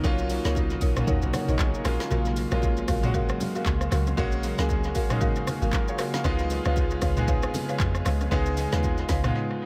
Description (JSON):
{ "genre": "amapiano", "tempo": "116 BPM", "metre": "4/4", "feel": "swing 58% on 16ths", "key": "F# major", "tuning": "A4 = 442 Hz", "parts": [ { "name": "clear concert grand piano", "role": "accompaniment", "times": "0.0-9.7 s", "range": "F#3 to F#5", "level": "-33 LUFS", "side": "equal", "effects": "dub echo" }, { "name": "airy breathy pad", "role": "sustained chords", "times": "0.0-9.7 s", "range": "B2 to E#5", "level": "-36 LUFS", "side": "equal", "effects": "chorus, sidechain pumping" }, { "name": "buzzing marimba with medium mallets", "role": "stabs", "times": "0.0-9.3 s", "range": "D#4 to E#5", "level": "-36 LUFS", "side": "equal", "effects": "dub echo" }, { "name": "deep log drum bass", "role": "bass", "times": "0.0-9.3 s", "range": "G#1 to E#2", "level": "-30 LUFS", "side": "equal", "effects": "none" }, { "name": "afro-pop drum kit", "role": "drums", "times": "0.0-9.3 s", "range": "handclaps, hi-hat, kick drum, rim click, shaker, snare drum, toms", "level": "-30 LUFS", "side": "equal", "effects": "dub echo" }, { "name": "congas and bongos", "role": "percussion", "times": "0.0-9.0 s", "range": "none", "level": "-41 LUFS", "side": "equal", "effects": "none" } ], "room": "light reverb", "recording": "echo-heavy mix", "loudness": "-25 LUFS", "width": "mono", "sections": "0.0-9.7 A section", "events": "kick muted 2.1-2.6; break 9.4-9.7", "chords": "0.0 Bmaj9; 1.9 F#maj7/A#; 6.2 C#7" }